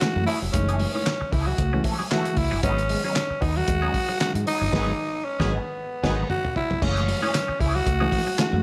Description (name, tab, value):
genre	funk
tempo	115 BPM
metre	4/4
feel	swing 56% on 16ths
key	F# dorian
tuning	A4 = 440 Hz
part	growling tenor saxophone	melody	0.0-8.6 s	B3 to F#4	-29 LUFS	equal	slapback echo
part	semi-hollow electric guitar	accompaniment	0.0-8.4 s	E3 to B4	-36 LUFS	equal	wah, tremolo
part	barky reed electric piano	stabs	0.0-8.6 s	D#3 to E4	-32 LUFS	equal	overdrive, fast tremolo
part	cloth-damped thuddy drum kit	drums	0.0-8.5 s	crash cymbal, handclaps, hi-hat, kick drum, snare drum, toms	-30 LUFS	equal	none
part	electric guitar at the edge of break-up	riff	0.2-8.6 s	E3 to A3	-37 LUFS	equal	none
part	vintage muted fingered electric bass	bass	0.2-8.6 s	E#1 to G#2	-29 LUFS	equal	none
part	warm horn section	second line	4.7-6.2 s	F#4 to B4	-38 LUFS	equal	none
room	moderate large studio reverb, RT60 1.4 s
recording	none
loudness	-24 LUFS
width	mono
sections	0.0-6.8 A section; 6.8-8.6 B section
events	band accent 4.7-6.8; drum fill 5.8-6.8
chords	0.0 F#m9; 2.6 G#m7; 6.8 F#m9